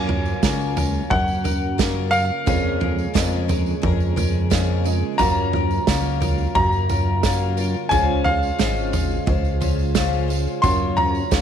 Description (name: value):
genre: indie folk with a building arrangement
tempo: 88 BPM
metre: 4/4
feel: straight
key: unclear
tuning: A4 = 445 Hz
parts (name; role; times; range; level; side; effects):
- bright upright piano; melody; 0.0-11.4 s; F5 to C6; -23 LUFS; left 1 dB; slapback echo
- felt-muted upright piano; accompaniment; 0.0-11.4 s; F1 to Eb5; -32 LUFS; right 12 dB; none
- picked twelve-string acoustic guitar; accompaniment; 0.0-11.4 s; F2 to Db5; -27 LUFS; left 13 dB; none
- mellow tonewheel organ; sustained chords; 0.0-11.4 s; Db3 to Ab4; -31 LUFS; right 11 dB; slow rotary speaker
- chorused synth bass; bass; 0.0-11.4 s; Ab1 to Gb2; -23 LUFS; equal; none
- unplugged drum kit; drums; 0.1-11.4 s; kick drum, snare drum, toms; -23 LUFS; right 3 dB; none
- tambourine; percussion; 0.3-11.4 s; none; -36 LUFS; right 16 dB; none
room: light reverb, studio reverb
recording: 1960s-style stereo with parts hard left and right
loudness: -18 LUFS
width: side -8 dB against mid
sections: 0.0-11.4 A section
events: none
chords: 0.0 Gbmaj7; 2.5 Bbm7/F; 5.2 Gbmaj7; 7.9 Dbmaj7; 10.6 Gbmaj7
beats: 0.43 1.11 1.79 | 2.47 3.15 3.83 4.51 | 5.19 5.87 6.55 7.23 | 7.91 8.60 9.28 9.96 | 10.64 11.32